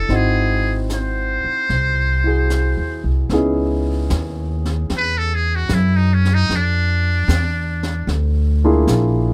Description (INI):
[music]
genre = jazz ballad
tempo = 75 BPM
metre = 4/4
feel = swing 69% on 8ths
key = C# minor from 3.3 s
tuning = A4 = 440 Hz
[part]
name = trumpet with metal mute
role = melody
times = 0.0-8.1 s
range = C#4 to B#4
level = -24 LUFS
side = equal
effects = none
[part]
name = warm concert grand piano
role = accompaniment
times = 0.0-9.3 s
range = A#3 to A4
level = -24 LUFS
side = equal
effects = none
[part]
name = upright bass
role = bass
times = 0.0-9.3 s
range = G#1 to F#2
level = -20 LUFS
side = equal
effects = none
[part]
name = jazz brush drum kit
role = drums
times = 0.1-9.3 s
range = brushed snare drum, hi-hat, snare drum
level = -31 LUFS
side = equal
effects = none
[sound]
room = little or no reverb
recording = close, detailed microphones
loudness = -18 LUFS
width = mono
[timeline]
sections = 0.0-3.3 A section; 3.3-9.3 B section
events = muted trumpet solo 3.3-9.3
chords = 0.1 G#7b13; 3.3 C#m9; 6.5 A#7#11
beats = | 0.10 0.89 1.69 2.50 | 3.30 4.10 4.90 5.69 | 6.49 7.28 8.08 8.87